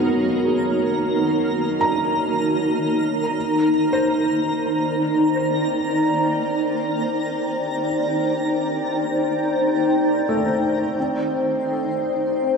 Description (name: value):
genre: ambient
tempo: free time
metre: none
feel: none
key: unclear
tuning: A4 = 440 Hz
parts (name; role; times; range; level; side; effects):
- granular cloud pad; sustained chords; 0.0-12.6 s; Eb4 to A#5; -20 LUFS; equal; built-in reverb
- felt-muted upright piano; arpeggios; 0.0-12.6 s; Ab3 to A#5; -27 LUFS; equal; analog delay
- twinkling granular texture; texture; 0.0-12.6 s; Bb3 to C6; -29 LUFS; right 1 dB; built-in reverb, ensemble chorus
- hand-pumped harmonium; drone; 11.0-12.6 s; Eb3 to Eb4; -44 LUFS; equal; none
room: wet huge ambient reverb, RT60 7.9 s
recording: dreamy mix soaked in reverb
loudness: -19 LUFS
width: side -5 dB against mid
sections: 0.0-11.0 A section; 11.0-12.6 B section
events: none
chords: 0.0 Bmaj7; 3.4 Cm7; 11.0 Eb69